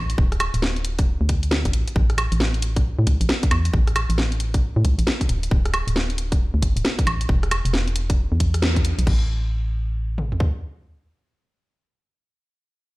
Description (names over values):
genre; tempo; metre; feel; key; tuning
UK garage, two-step garage; 135 BPM; 4/4; swing 63% on 16ths; unclear; A4 = 440 Hz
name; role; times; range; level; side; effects
organ-like FM bass; bass; 0.0-10.4 s; D1 to A2; -22 LUFS; equal; none
garage drum kit; drums; 0.1-9.2 s; crash cymbal, hi-hat, rim click, snare drum, woodblock; -25 LUFS; equal; none
garage drum kit; drums; 0.2-10.5 s; kick drum, toms; -21 LUFS; equal; none
room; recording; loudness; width
light reverb; played on a big sound system in a bare room, large studio reverb; -19 LUFS; side -21 dB against mid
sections
0.0-9.1 A section; 9.1-12.6 B section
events
drop 0.0-9.1; band accent 8.6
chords
none